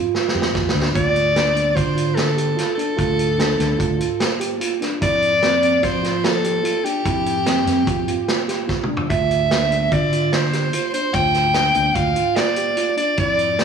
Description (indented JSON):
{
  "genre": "progressive instrumental, band music in an uneven meter",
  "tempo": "147 BPM",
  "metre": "5/4",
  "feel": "straight",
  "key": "D minor",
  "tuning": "A4 = 440 Hz",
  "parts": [
    { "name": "mellow tine electric piano", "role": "arpeggios", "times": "0.0-13.6 s", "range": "C4 to G4", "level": "-24 LUFS", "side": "right 6 dB", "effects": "digital delay" },
    { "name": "vintage drum kit", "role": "drums", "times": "0.1-13.6 s", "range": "hi-hat, kick drum, snare drum, toms", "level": "-23 LUFS", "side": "right 1 dB", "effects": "none" },
    { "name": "fingered electric bass", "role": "bass", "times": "0.3-13.6 s", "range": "D2 to F3", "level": "-23 LUFS", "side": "equal", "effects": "none" },
    { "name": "bright soprano saxophone", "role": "melody", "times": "1.0-13.6 s", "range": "G4 to G5", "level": "-20 LUFS", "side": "left 1 dB", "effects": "digital delay" }
  ],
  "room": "moderate studio reverb, RT60 0.9 s",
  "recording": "blown-out, overdriven recording, overdrive, small room ambience",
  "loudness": "-16 LUFS",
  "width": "side -6 dB against mid",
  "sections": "1.0-13.6 A section",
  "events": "drum fill 0.1-1.0, 8.7-9.1",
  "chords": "0.0 Fsus2; 1.0 Dm; 5.0 Fmaj7sus2; 9.1 Dm9"
}